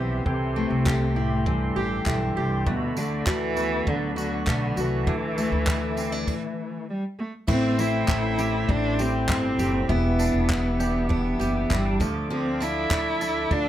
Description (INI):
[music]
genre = acoustic pop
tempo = 100 BPM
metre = 4/4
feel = straight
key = unclear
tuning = A4 = 440 Hz
[part]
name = warm cello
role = melody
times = 0.0-13.7 s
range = G2 to E4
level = -27 LUFS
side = equal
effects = none
[part]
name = picked steel-string acoustic guitar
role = accompaniment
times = 0.0-13.7 s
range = E2 to G4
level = -28 LUFS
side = left 2 dB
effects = none
[part]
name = tonewheel organ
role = sustained chords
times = 0.0-13.7 s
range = B3 to D6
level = -34 LUFS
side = equal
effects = slow rotary speaker
[part]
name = clean electric guitar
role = arpeggios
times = 0.0-13.7 s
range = E3 to A4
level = -34 LUFS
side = right 3 dB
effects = ensemble chorus
[part]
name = upright bass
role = bass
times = 0.0-13.7 s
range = E1 to D2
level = -28 LUFS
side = equal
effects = none
[part]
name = compact cocktail drum kit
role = drums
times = 0.3-13.6 s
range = crash cymbal, handclaps, kick drum, tambourine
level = -28 LUFS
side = equal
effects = none
[sound]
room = light reverb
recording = none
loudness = -22 LUFS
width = side -12 dB against mid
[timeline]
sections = 0.0-7.5 A section; 7.5-13.7 B section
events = stop 6.3-7.5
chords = 0.3 Am7/C; 2.7 Bm7/D; 5.1 Dsus2; 7.5 Am7; 9.9 Em7; 12.0 Dm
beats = | 0.26 0.86 1.46 2.06 | 2.67 3.27 3.87 4.47 | 5.07 5.68 6.28 6.88 | 7.48 8.09 8.69 9.29 | 9.89 10.49 11.10 11.70 | 12.30 12.90 13.50